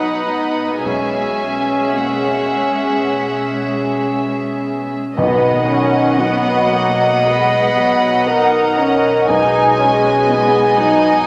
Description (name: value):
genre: cinematic, emotional film score for orchestra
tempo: 54-61 BPM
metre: 4/4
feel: rubato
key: B major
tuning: A4 = 439 Hz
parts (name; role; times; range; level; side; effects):
- rich studio violin section; melody; 0.0-11.3 s; D#5 to B5; -27 LUFS; equal; none
- clear studio violin section; second line; 0.0-11.3 s; G#4 to G#5; -24 LUFS; equal; none
- dark grand piano; accompaniment; 0.0-11.3 s; B1 to G#4; -30 LUFS; equal; none
- warm studio viola section; accompaniment; 0.0-11.3 s; F#3 to D#4; -21 LUFS; equal; none
- concert harp; arpeggios; 0.0-11.3 s; B2 to D#6; -28 LUFS; equal; none
- warm studio cello section; bass; 0.0-11.3 s; B2; -30 LUFS; equal; none
- mellow wooden-headed alto flute; melody; 5.2-11.3 s; D#4 to B4; -28 LUFS; equal; none
- large flute ensemble; second line; 5.2-11.3 s; F#5 to G#5; -22 LUFS; equal; none
- warm clarinet; second line; 5.2-11.3 s; D#5; -22 LUFS; equal; none
- mellow French horn section; sustained chords; 5.2-11.3 s; D#3 to A#4; -22 LUFS; equal; none
- warm chamber double bass section; bass; 5.2-11.3 s; B1; -33 LUFS; equal; none
- timpani; percussion; 5.2-6.7 s; B2; -28 LUFS; equal; none
room: wet scoring stage reverb, RT60 1.6 s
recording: none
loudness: -16 LUFS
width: mono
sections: 0.0-5.2 A section; 5.2-11.3 A section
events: none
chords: 0.0 B; 0.8 F#add9/B; 5.2 B; 9.3 G#m/B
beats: | 0.82 1.93 3.02 4.11 | 5.17 6.19 7.26 8.27 | 9.27 10.28 11.26